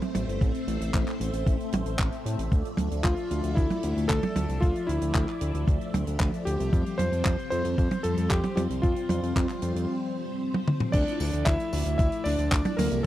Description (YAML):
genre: italo disco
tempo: 114 BPM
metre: 4/4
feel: straight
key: D minor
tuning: A4 = 440 Hz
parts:
  - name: string machine, full ensemble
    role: sustained chords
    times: 0.0-13.1 s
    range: F3 to E5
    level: -33 LUFS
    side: equal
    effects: phaser, ensemble chorus
  - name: tight funk drum kit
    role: drums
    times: 0.0-13.0 s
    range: crash cymbal, handclaps, hi-hat, tambourine, toms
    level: -30 LUFS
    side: right 2 dB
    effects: none
  - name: fat analog bass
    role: bass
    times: 0.1-13.0 s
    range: G1 to A2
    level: -29 LUFS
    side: equal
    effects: tube saturation
  - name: electronic kick drum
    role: drums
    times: 0.4-12.6 s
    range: none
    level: -26 LUFS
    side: equal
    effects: none
  - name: warm electric grand piano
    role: melody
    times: 3.0-13.1 s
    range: Bb3 to E5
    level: -30 LUFS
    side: left 1 dB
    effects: vintage 12-bit sampler grit, tape echo
room: small room ambience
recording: dry, close 1970s-style studio recording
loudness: -24 LUFS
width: side -14 dB against mid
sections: 0.0-10.9 A section; 10.9-13.1 B section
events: break 9.9-10.9; drum fill 10.5-10.9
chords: 0.0 Am; 2.5 Dmadd9; 6.7 Fsus2; 10.9 Dmadd9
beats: | 0.41 0.94 1.47 1.99 | 2.52 3.04 3.57 4.10 | 4.62 5.15 5.68 6.20 | 6.73 7.25 7.78 8.31 | 8.83 9.36 9.89 10.41 | 10.94 11.47 11.99 12.52 | 13.04